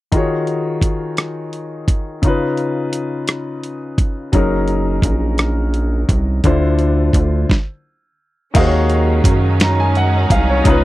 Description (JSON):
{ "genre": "slow six-eight R&B", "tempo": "57 BPM (dotted quarters)", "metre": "6/8", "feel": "straight", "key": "unclear", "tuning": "A4 = 440 Hz", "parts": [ { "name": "clear concert grand piano", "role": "accompaniment", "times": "0.1-10.8 s", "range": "Db3 to Bb5", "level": "-18 LUFS", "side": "left 2 dB", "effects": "none" }, { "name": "dusty soul sampler-style drum kit", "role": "drums", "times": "0.1-10.8 s", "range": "crash cymbal, hi-hat, kick drum, rim click, snare drum", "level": "-16 LUFS", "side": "right 1 dB", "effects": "none" }, { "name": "rubbery square bass", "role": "bass", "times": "4.3-10.8 s", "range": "Gb1 to Gb2", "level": "-16 LUFS", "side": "right 1 dB", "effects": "none" }, { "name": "clear studio string section", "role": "sustained chords", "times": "8.5-10.8 s", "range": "Gb3 to Eb4", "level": "-23 LUFS", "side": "right 3 dB", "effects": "none" } ], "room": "little or no reverb", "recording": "dry, close 1970s-style studio recording", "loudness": "-14 LUFS", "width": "side -16 dB against mid", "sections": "0.1-8.5 A section; 8.5-10.8 B section", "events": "stop 7.5-8.5", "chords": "0.1 Ebm11; 2.2 Db7; 4.3 Gb69; 6.4 Dm9; 7.5 N.C.; 8.5 Ebm11" }